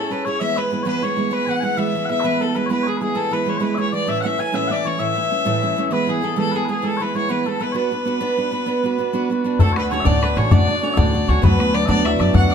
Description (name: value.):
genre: celtic folk, Celtic slide.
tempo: 131 BPM (dotted quarters).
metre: 12/8.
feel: straight.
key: unclear.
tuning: A4 = 440 Hz.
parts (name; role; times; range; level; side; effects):
bright fiddle; melody; 0.0-12.5 s; G#4 to G#5; -24 LUFS; left 3 dB; plate reverb.
mellow small bagpipes; second line; 0.0-12.5 s; G#4 to G#5; -26 LUFS; left 7 dB; none.
picked steel-string acoustic guitar; accompaniment; 0.0-12.5 s; D2 to C#5; -21 LUFS; right 5 dB; none.
hammered dulcimer; second line; 9.6-12.5 s; A3 to G4; -25 LUFS; right 2 dB; none.
upright bass; bass; 9.6-12.5 s; A1 to F#2; -19 LUFS; left 1 dB; none.
bodhran; percussion; 9.6-12.4 s; none; -17 LUFS; left 2 dB; none.
room: wet studio reverb, RT60 0.8 s.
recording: dark, warm production.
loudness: -17 LUFS.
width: side -7 dB against mid.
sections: 0.0-9.6 A section; 9.6-12.5 B section.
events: none.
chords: 0.4 E; 4.1 A; 5.9 E; 7.8 Bm; 9.6 D; 11.4 Bm/D.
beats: | 0.40 0.86 1.32 1.78 | 2.24 2.70 3.16 3.62 | 4.08 4.54 5.00 5.46 | 5.92 6.38 6.84 7.30 | 7.76 8.22 8.68 9.13 | 9.59 10.05 10.51 10.97 | 11.43 11.88 12.34.